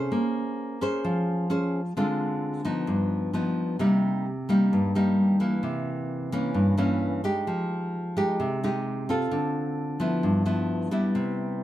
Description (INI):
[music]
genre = bossa nova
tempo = 130 BPM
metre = 4/4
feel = straight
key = unclear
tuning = A4 = 440 Hz
[part]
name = nylon-string guitar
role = solo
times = 0.0-11.6 s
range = G2 to C5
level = -24 LUFS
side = equal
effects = none
[sound]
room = moderate large studio reverb, RT60 0.9 s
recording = none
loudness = -24 LUFS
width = side -14 dB against mid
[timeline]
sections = 0.0-11.6 A section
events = none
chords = 0.1 Bbm9; 2.0 Dm7b5; 2.9 Gaug7; 3.8 Cm7; 5.6 C7b9; 7.5 Fm9; 9.3 Dm7; 10.2 G6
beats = | 0.11 0.57 1.04 1.50 | 1.96 2.42 2.88 3.34 | 3.80 4.26 4.72 5.18 | 5.64 6.10 6.56 7.02 | 7.48 7.94 8.40 8.86 | 9.31 9.78 10.23 10.69 | 11.15 11.61